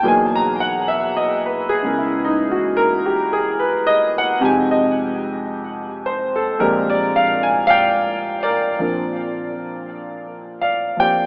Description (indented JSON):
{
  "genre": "jazz ballad",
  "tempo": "55 BPM",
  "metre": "4/4",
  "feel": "swing 66% on 8ths",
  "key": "unclear",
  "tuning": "A4 = 438 Hz",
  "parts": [
    { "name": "warm grand piano", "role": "solo", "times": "0.0-11.3 s", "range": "E2 to A#5", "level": "-19 LUFS", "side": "equal", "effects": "analog chorus, tape echo" }
  ],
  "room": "wet plate reverb, RT60 3.6 s",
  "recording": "dreamy mix soaked in reverb, AM radio sound",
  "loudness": "-19 LUFS",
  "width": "mono",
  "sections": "0.0-8.8 A section; 8.8-11.3 B section",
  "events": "none",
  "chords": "0.0 Emaj9#11; 4.4 Fm9; 6.6 Bb13; 8.8 Bbadd9"
}